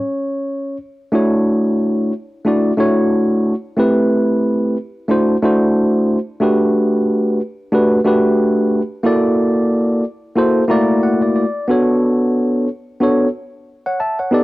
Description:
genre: hip hop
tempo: 91 BPM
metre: 4/4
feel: swing 57% on 16ths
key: D major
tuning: A4 = 439 Hz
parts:
  - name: tine electric piano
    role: solo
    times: 0.0-14.4 s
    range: A3 to A#5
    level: -14 LUFS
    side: equal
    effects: wide subtle chorus, cassette tape
room: light reverb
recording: home recording on cassette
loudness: -14 LUFS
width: side -18 dB against mid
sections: 0.0-1.1 A section; 1.1-14.4 A section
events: tine electric piano solo 0.0-1.1; tine electric piano fill 10.4-11.7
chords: 0.0 N.C.; 1.1 Dmaj9; 3.8 Am7; 5.1 D9; 6.4 Gmaj7; 9.1 F#7alt; 11.7 Bm9

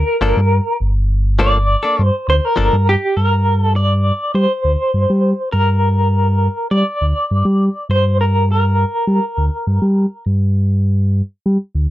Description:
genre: straight-eighth soul blues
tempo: 101 BPM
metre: 4/4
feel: straight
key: G minor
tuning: A4 = 439 Hz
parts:
  - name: electric guitar through a small old amp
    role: melody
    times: 0.0-10.2 s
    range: G4 to D5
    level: -18 LUFS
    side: equal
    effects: tremolo
  - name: sub bass with octave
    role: bass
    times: 0.0-11.9 s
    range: G1 to G3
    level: -14 LUFS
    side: equal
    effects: none
  - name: direct-recorded clean electric guitar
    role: stabs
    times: 0.2-2.8 s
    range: F3 to A4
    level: -19 LUFS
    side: left 4 dB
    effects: none
room: little or no reverb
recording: dry, close 1970s-style studio recording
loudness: -13 LUFS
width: side -15 dB against mid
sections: 0.0-3.2 A section; 3.2-11.9 B section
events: clean electric guitar solo 0.0-3.2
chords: 0.0 Gm9; 3.2 Gm

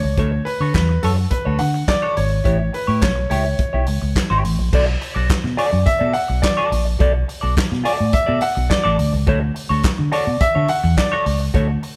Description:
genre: disco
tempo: 106 BPM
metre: 4/4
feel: straight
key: B minor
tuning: A4 = 439 Hz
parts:
  - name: clear baby grand piano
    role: melody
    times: 0.0-11.4 s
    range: A4 to F#5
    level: -24 LUFS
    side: equal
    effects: none
  - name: clean electric guitar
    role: accompaniment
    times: 0.0-11.9 s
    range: E4 to D5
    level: -26 LUFS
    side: equal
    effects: wah
  - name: vintage muted fingered electric bass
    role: bass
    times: 0.0-11.8 s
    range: G#1 to D3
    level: -22 LUFS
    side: equal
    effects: none
  - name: vintage drum kit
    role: drums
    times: 0.2-12.0 s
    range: crash cymbal, handclaps, hi-hat, kick drum, snare drum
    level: -24 LUFS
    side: equal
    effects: none
room: moderate stone room reverb, RT60 1.5 s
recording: band playing live in one room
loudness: -18 LUFS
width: mono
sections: 0.0-4.7 A section; 4.7-12.0 B section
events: none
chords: 0.0 Dmaj7; 2.5 A7; 4.7 Bm7; 9.0 Dmaj7

